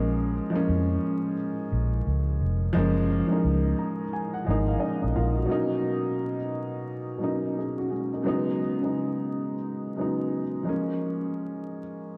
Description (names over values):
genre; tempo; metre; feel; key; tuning
lo-fi hip hop; 87 BPM; 4/4; swing 62% on 16ths; unclear; A4 = 440 Hz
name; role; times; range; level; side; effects
dark upright piano; accompaniment; 0.0-12.2 s; B2 to A#5; -29 LUFS; equal; cassette tape, low-pass filter
vintage muted fingered electric bass; bass; 0.0-5.5 s; E#1 to E#2; -28 LUFS; equal; none
room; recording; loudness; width
wet church reverb, RT60 3.0 s; dreamy mix soaked in reverb, vinyl crackle; -27 LUFS; mono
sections
0.0-5.5 A section; 5.5-12.2 B section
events
none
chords
0.0 A#m7; 2.7 F#maj9; 5.5 Bmaj7; 8.3 C#7sus4; 10.7 A#m7